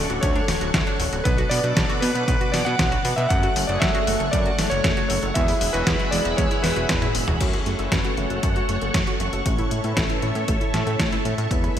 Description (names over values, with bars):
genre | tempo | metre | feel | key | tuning
italo disco | 117 BPM | 4/4 | straight | unclear | A4 = 440 Hz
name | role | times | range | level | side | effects
clear electric grand piano | melody | 0.0-7.1 s | B4 to F#5 | -26 LUFS | right 1 dB | digital delay
string machine, full ensemble | sustained chords | 0.0-11.8 s | A3 to D6 | -28 LUFS | equal | ensemble chorus
analog pluck | arpeggios | 0.0-11.8 s | G#3 to B4 | -31 LUFS | right 2 dB | chorus, cassette tape, ping-pong delay
mellow synth brass | stabs | 0.0-11.8 s | A2 to C#5 | -30 LUFS | left 3 dB | chorus, cassette tape, ping-pong delay
fat analog bass | bass | 0.0-11.8 s | D1 to B2 | -26 LUFS | equal | none
detuned 8-bit digital drum machine | drums | 0.1-11.8 s | crash cymbal, hi-hat, snare drum, toms | -26 LUFS | left 1 dB | none
electronic kick drum | drums | 0.2-11.6 s | none | -25 LUFS | equal | none
room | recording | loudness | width
moderate lush hall reverb, RT60 1.9 s, digital ambience | bright 1980s-style digital production | -19 LUFS | side -10 dB against mid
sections
0.0-7.4 A section; 7.4-11.8 B section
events
drum fill 6.9-7.4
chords
0.0 Dmaj7; 1.3 Bm; 3.3 F#m; 5.4 Eadd9; 7.4 F#m; 9.5 A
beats
0.23 0.74 | 1.25 1.77 2.28 2.79 | 3.30 3.82 4.33 4.84 | 5.36 5.87 6.38 6.89 | 7.41 7.92 8.43 8.95 | 9.46 9.97 10.48 11.00 | 11.51